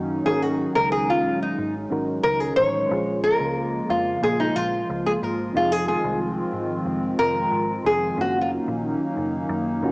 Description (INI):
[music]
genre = indie pop, bedroom pop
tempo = 91 BPM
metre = 4/4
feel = straight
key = Bb minor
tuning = A4 = 440 Hz
[part]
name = nylon-string guitar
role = accompaniment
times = 0.0-8.5 s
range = Eb4 to Db5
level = -22 LUFS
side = equal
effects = wide subtle chorus, warbly pitch drift
[part]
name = reed electric piano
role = accompaniment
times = 0.0-9.9 s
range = Bb3 to C5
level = -30 LUFS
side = right 1 dB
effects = cassette tape
[part]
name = hollow soft pad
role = sustained chords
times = 0.0-9.9 s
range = Db3 to F4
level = -26 LUFS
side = equal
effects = chorus
[part]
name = vintage muted picked electric bass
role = bass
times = 0.0-9.9 s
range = F1 to Bb2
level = -33 LUFS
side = equal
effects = none
[sound]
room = moderate spring reverb, RT60 2.4 s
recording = home recording on cassette, small speaker sound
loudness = -20 LUFS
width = side -25 dB against mid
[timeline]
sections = 0.0-9.9 A section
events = nylon-string guitar solo 0.0-9.9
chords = 0.3 Ab7sus4; 2.9 Bbm7; 5.5 Fm7; 8.2 Ebm7/Gb